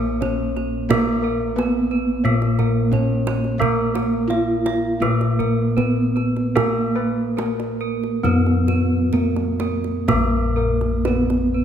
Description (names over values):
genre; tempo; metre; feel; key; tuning
Javanese gamelan; 62-88 BPM; 4/4; straight; Bb pelog; A4 = 437 Hz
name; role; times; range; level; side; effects
gamelan-type bronze metallophone; melody; 0.0-11.6 s; Bb3 to F4-30c; -23 LUFS; right 1 dB; none
gamelan-type bronze metallophone; accompaniment; 0.0-11.6 s; Bb3 to Cb4+20c; -25 LUFS; right 1 dB; none
gamelan-type bossed gongs; arpeggios; 0.0-11.6 s; Gb4-20c to F5-30c; -30 LUFS; left 3 dB; none
gamelan-type bronze metallophone; arpeggios; 0.0-11.6 s; Bb4 to F5-30c; -29 LUFS; right 7 dB; none
gamelan-type bossed gongs; bass; 0.0-11.6 s; Bb1 to Bb4; -23 LUFS; left 2 dB; none
kendang; percussion; 0.2-11.4 s; none; -27 LUFS; right 6 dB; none
room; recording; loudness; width
moderate concert hall reverb, RT60 2.2 s; none; -18 LUFS; side -9 dB against mid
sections
0.0-10.1 A section; 10.1-11.6 B section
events
none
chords
none